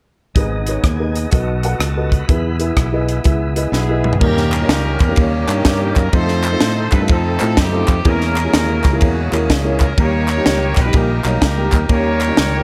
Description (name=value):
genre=uptempo gospel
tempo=125 BPM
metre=4/4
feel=swing 65% on 8ths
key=unclear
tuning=A4 = 440 Hz
part: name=percussive tonewheel organ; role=sustained chords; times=0.3-12.6 s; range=D#3 to B5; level=-28 LUFS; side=equal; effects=overdrive, fast rotary speaker
part: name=dark upright piano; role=accompaniment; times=0.4-12.6 s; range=G#2 to F#5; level=-24 LUFS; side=equal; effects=none
part: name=fingered electric bass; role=bass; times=0.4-12.6 s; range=G#1 to A2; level=-21 LUFS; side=equal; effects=none
part: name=crisp fusion drum kit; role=drums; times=0.4-12.5 s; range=crash cymbal, hi-hat, kick drum, ride cymbal, rim click, snare drum, toms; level=-19 LUFS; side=equal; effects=none
part: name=clear horn section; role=melody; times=3.7-12.6 s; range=A#3 to C#5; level=-24 LUFS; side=equal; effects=none
part: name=group handclap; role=percussion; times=4.5-12.3 s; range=none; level=-28 LUFS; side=equal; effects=none
room=light reverb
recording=none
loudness=-16 LUFS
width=mono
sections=0.4-4.2 A section; 4.2-12.6 B section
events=drum fill 3.7-4.2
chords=0.4 G#m; 1.3 B7; 2.3 E; 4.2 D#7; 6.1 F7; 8.1 A#m7b5; 10.0 D#; 11.9 D#7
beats=| 0.36 0.85 1.33 1.81 | 2.29 2.77 3.26 3.74 | 4.22 4.70 5.18 5.66 | 6.14 6.62 7.10 7.58 | 8.06 8.54 9.02 9.50 | 9.98 10.46 10.94 11.41 | 11.89 12.37